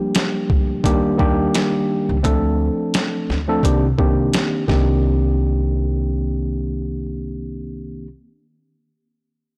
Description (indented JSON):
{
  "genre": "hip hop, boom-bap hip-hop",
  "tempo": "86 BPM",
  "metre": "4/4",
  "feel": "swing 55% on 16ths",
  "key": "C dorian",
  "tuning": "A4 = 441 Hz",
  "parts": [
    { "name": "mellow tine electric piano", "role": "accompaniment", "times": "0.0-8.1 s", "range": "Eb3 to A4", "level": "-23 LUFS", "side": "equal", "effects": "high-pass filter, low-pass filter" },
    { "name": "boom bap sampler-style drum kit", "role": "drums", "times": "0.1-4.9 s", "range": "hi-hat, kick drum, snare drum", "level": "-22 LUFS", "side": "equal", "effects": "none" },
    { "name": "upright bass", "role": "bass", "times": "0.5-8.1 s", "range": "C2 to Eb2", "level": "-24 LUFS", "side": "equal", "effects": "transformer saturation" }
  ],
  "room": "light reverb, digital ambience",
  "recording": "blown-out, overdriven recording, overdrive",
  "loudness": "-19 LUFS",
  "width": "mono",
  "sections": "0.0-5.0 A section; 5.0-7.8 B section",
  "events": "filter sweep on tine electric piano 0.0-5.0",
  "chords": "0.0 Bb6; 0.8 Ebmaj7; 2.2 Dm7; 3.6 Cm9",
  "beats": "0.15 0.84 1.54 | 2.24 2.94 3.63 4.33 | 5.03 5.73 6.43 7.12"
}